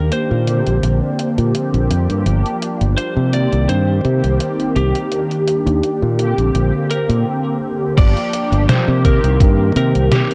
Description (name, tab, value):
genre	vaporwave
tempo	84 BPM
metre	4/4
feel	swing 54% on 16ths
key	Bb major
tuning	A4 = 439 Hz
part	lightly driven lead guitar	melody	0.0-10.3 s	G4 to D5	-25 LUFS	equal	vintage 12-bit sampler grit, tape echo
part	mellow synth brass	accompaniment	0.0-10.3 s	D3 to G4	-22 LUFS	equal	phaser, ensemble chorus
part	lush unison pad	sustained chords	0.0-7.3 s	D3 to G4	-32 LUFS	equal	chorus, phaser, vintage 12-bit sampler grit
part	modern bright fingered electric bass	bass	0.0-10.1 s	G1 to C3	-18 LUFS	equal	tube saturation
part	detuned 8-bit digital drum machine	drums	0.1-10.3 s	crash cymbal, hi-hat, snare drum	-24 LUFS	equal	none
part	electronic kick drum	drums	8.0-9.6 s	none	-15 LUFS	equal	none
room	light reverb, digital ambience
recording	dark, warm production, cassette tape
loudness	-16 LUFS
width	mono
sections	0.0-8.0 A section; 8.0-10.3 B section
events	stop 7.3-8.0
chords	0.5 Bb69; 2.3 Gm7; 3.3 Cm7; 5.1 Ebmaj7; 6.2 Bb69; 8.0 Gm7; 9.0 Cm7